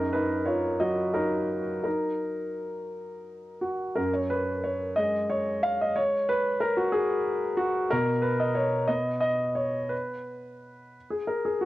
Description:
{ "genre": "neoclassical minimalist piano", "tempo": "55-63 BPM (dotted quarters)", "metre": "6/8", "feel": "rubato", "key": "F# major", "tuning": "A4 = 440 Hz", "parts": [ { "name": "warm baby grand piano", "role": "solo", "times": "0.0-11.7 s", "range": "F#2 to E#5", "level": "-25 LUFS", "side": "equal", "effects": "cassette tape" } ], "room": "light reverb, small room ambience", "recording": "home recording on cassette", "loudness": "-25 LUFS", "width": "side -16 dB against mid", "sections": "0.0-4.0 A section; 4.0-11.7 A section", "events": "none", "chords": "0.0 D#m/F#; 4.0 F#sus2; 7.9 N.C." }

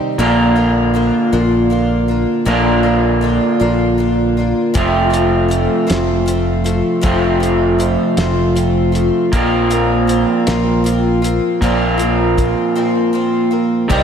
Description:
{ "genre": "folk rock and heartland rock", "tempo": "52 BPM (dotted quarters)", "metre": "6/8", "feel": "straight", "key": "unclear", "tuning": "A4 = 440 Hz", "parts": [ { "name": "picked twelve-string acoustic guitar", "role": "accompaniment", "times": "0.0-14.0 s", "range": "F2 to G4", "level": "-18 LUFS", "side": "left 3 dB", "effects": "slapback echo" }, { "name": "electric guitar through a small old amp", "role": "riff", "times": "0.0-14.0 s", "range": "F2 to G4", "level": "-15 LUFS", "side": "right 2 dB", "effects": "spring reverb" }, { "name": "fingered electric bass", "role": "bass", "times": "0.2-14.0 s", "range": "F1 to C2", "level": "-19 LUFS", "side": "equal", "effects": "none" }, { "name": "cloth-damped thuddy drum kit", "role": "drums", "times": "4.8-14.0 s", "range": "crash cymbal, hi-hat, kick drum, snare drum", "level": "-21 LUFS", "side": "equal", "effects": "none" } ], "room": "moderate lush hall reverb, RT60 2.8 s", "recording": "big arena sound", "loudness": "-12 LUFS", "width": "side -7 dB against mid", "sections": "0.0-13.9 A section", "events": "none", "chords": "0.2 Bb; 4.8 F; 9.3 Bbsus2" }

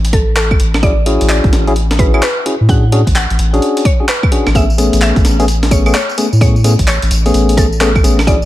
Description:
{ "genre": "UK garage, two-step garage", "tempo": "129 BPM", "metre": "4/4", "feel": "swing 64% on 16ths", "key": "A major", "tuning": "A4 = 440 Hz", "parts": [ { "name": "soft dub sub bass", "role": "bass", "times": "0.0-8.5 s", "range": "A1 to A2", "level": "-13 LUFS", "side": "equal", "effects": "none" }, { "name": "breakbeat sampler-style drum kit", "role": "drums", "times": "0.0-8.5 s", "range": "claves, handclaps, hi-hat, snare drum, tambourine", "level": "-18 LUFS", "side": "equal", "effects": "none" }, { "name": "mallet-like synth pluck", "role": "melody", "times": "0.1-8.5 s", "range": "A4 to F#5", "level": "-21 LUFS", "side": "equal", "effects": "chorus, dub echo" }, { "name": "electronic kick drum", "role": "drums", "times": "0.1-8.4 s", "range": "none", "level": "-13 LUFS", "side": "equal", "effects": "overdrive" }, { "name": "tine electric piano", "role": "stabs", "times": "0.8-8.4 s", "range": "A3 to G#4", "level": "-16 LUFS", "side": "left 2 dB", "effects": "ping-pong delay" } ], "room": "little or no reverb", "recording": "vinyl crackle", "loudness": "-9 LUFS", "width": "side -15 dB against mid", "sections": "0.0-8.5 A section", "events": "none", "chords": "0.0 N.C.; 0.8 Amaj13; 4.5 Amaj9" }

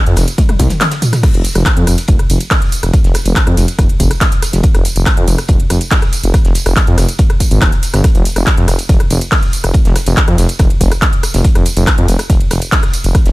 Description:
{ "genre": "driving peak-time techno", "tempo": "141 BPM", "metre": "4/4", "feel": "straight", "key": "unclear", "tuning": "A4 = 440 Hz", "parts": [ { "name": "detuned saw bass", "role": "bass", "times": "0.1-13.3 s", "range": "Eb1 to F2", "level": "-13 LUFS", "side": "equal", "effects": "sidechain pumping" }, { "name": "techno drum kit", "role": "drums", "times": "0.1-13.3 s", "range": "crash cymbal, handclaps, hi-hat, ride cymbal, rim click, tambourine, toms", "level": "-17 LUFS", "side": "equal", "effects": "sidechain pumping on hats, sidechain pumping on cymbals, sidechain pumping on perc, sidechain pumping on toms" }, { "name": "warm soul drum kit", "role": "drums", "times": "0.2-13.3 s", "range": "hi-hat, snare drum", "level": "-31 LUFS", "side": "left 1 dB", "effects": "high-pass filter on hats, high-pass filter on snare, high-pass filter on room" }, { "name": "electronic kick drum", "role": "drums", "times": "0.4-13.2 s", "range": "none", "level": "-12 LUFS", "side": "equal", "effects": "none" } ], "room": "little or no reverb", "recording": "none", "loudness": "-9 LUFS", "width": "side -20 dB against mid", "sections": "0.0-13.3 A section", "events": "drum fill 0.4-1.2", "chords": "none" }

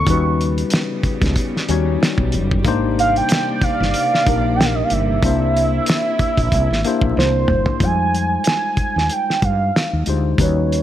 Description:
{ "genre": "R&B, neo-soul", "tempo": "93 BPM", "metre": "4/4", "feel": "swing 56% on 16ths", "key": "unclear", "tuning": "A4 = 441 Hz", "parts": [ { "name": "warm velvety synth lead", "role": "melody", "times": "0.0-10.8 s", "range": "C5 to Db6", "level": "-20 LUFS", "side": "right 4 dB", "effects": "chorus, slapback echo" }, { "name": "tine electric piano", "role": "accompaniment", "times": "0.0-10.8 s", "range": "G3 to Db5", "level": "-23 LUFS", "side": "left 8 dB", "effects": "none" }, { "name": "warm studio string section", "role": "sustained chords", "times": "0.0-7.8 s", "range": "C3 to D5", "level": "-28 LUFS", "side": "right 4 dB", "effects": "none" }, { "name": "woody fretless electric bass", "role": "bass", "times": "0.0-10.8 s", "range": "F#1 to G2", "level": "-20 LUFS", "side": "equal", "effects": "none" }, { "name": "cloth-damped thuddy drum kit", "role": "drums", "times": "0.1-10.8 s", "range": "hi-hat, kick drum, snare drum, toms", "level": "-20 LUFS", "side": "equal", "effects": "none" } ], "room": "little or no reverb", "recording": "vinyl crackle", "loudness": "-15 LUFS", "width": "side -12 dB against mid", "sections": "0.0-7.8 A section; 7.8-10.8 B section", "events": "drum fill 7.2-7.8", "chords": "0.1 Eb7alt; 2.6 Abmaj9#11; 5.2 C7; 7.8 Fm9" }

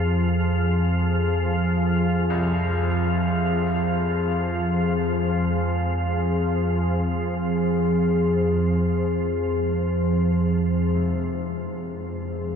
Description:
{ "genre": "dark ambient drone", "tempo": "free time", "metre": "none", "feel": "none", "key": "unclear", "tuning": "A4 = 440 Hz", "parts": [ { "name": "deep dark ambient pad", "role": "sustained chords", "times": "0.0-12.6 s", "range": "F3 to F5", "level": "-25 LUFS", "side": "left 2 dB", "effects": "chorus, built-in reverb" }, { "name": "organ-like drone", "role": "drone", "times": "0.0-12.6 s", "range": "F2 to F3", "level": "-22 LUFS", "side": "right 1 dB", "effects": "ensemble chorus, built-in reverb" }, { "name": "bronze singing bowl", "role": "texture", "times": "0.0-12.6 s", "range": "none", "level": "barely audible", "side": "none", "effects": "none" }, { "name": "clear baby grand piano", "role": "arpeggios", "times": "2.3-12.6 s", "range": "C2 to C3", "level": "-39 LUFS", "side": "left 3 dB", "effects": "tape echo" }, { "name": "tam-tam", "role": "percussion", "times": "11.0-11.1 s", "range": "none", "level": "-44 LUFS", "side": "right 3 dB", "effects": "none" } ], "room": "moderate huge ambient reverb, RT60 8.7 s", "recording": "dark, warm production", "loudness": "-20 LUFS", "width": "side -7 dB against mid", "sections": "0.0-10.9 A section; 10.9-12.6 B section", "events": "fade-out on grand piano 0.0-10.9", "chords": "0.0 Fm" }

